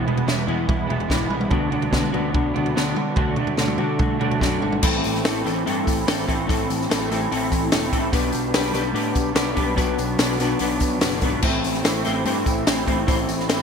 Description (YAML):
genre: indie rock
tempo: 146 BPM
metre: 4/4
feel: straight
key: A dorian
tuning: A4 = 440 Hz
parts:
  - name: electric guitar through a small old amp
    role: riff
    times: 0.0-13.6 s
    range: A2 to E4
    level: -26 LUFS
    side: right 8 dB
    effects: analog chorus
  - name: mellow electric guitar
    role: riff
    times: 0.0-13.6 s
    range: E2 to C5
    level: -24 LUFS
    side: left 8 dB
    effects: ensemble chorus
  - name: fuzz picked electric bass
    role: bass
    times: 0.0-13.6 s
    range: E1 to D3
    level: -29 LUFS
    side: equal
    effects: overdrive
  - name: compact cocktail drum kit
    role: drums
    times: 0.1-13.6 s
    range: crash cymbal, hi-hat, kick drum, snare drum, toms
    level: -23 LUFS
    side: equal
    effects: gated reverb
  - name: tambourine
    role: percussion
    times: 4.8-13.6 s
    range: none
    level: -37 LUFS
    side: left 11 dB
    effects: none
room: light reverb, studio ambience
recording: bright 1980s-style digital production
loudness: -19 LUFS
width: side -6 dB against mid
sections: 0.0-4.8 A section; 4.8-13.6 B section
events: none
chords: 0.0 E; 1.5 Bm/D; 3.2 D; 4.8 Am; 8.1 G/B; 9.8 Bm; 11.4 Am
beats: 0.27 0.68 1.10 | 1.51 1.93 2.35 2.76 | 3.17 3.59 4.00 4.42 | 4.83 5.25 5.66 6.07 | 6.48 6.89 7.31 7.72 | 8.13 8.54 8.96 9.37 | 9.78 10.19 10.60 11.02 | 11.43 11.84 12.25 12.66 | 13.07 13.48